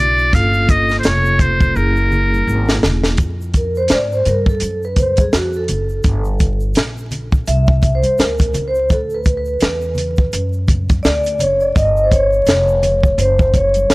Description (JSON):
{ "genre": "hip hop, jazz-hop", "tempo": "84 BPM", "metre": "4/4", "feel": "swing 59% on 16ths", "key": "unclear", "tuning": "A4 = 438 Hz", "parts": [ { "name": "trumpet with metal mute", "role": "melody", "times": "0.0-2.8 s", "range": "Bb4 to F5", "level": "-16 LUFS", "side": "equal", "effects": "none" }, { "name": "vibraphone with soft mallets", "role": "accompaniment", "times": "0.0-13.9 s", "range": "A3 to E5", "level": "-18 LUFS", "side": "equal", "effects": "none" }, { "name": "upright bass", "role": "bass", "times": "0.0-13.9 s", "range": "Fb1 to Ab2", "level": "-19 LUFS", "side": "equal", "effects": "none" }, { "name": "tube shaker and congas", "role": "percussion", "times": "0.2-13.9 s", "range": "none", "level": "-29 LUFS", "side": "equal", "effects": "none" }, { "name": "compact cocktail drum kit", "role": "drums", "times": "0.3-13.9 s", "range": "hi-hat, kick drum, snare drum", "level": "-16 LUFS", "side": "equal", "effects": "none" } ], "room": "studio reverb", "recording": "dry, gritty hardware recording, vinyl crackle", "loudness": "-13 LUFS", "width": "side -23 dB against mid", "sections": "0.0-3.2 A section; 3.2-13.9 B section", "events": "drum fill 1.8-3.2; vibraphone solo 3.2-13.9", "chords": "0.3 Gm7b5; 1.8 Gb9; 3.2 Fmadd9; 4.6 Gbmmaj7; 6.0 Gm; 7.5 Csus2; 8.9 Dadd9; 11.8 Eb9; 13.2 Gb5", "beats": "| 0.33 1.04 1.76 2.47 | 3.19 3.90 4.62 5.33 | 6.04 6.76 7.47 8.19 | 8.90 9.62 10.33 11.04 | 11.76 12.47 13.19 13.90" }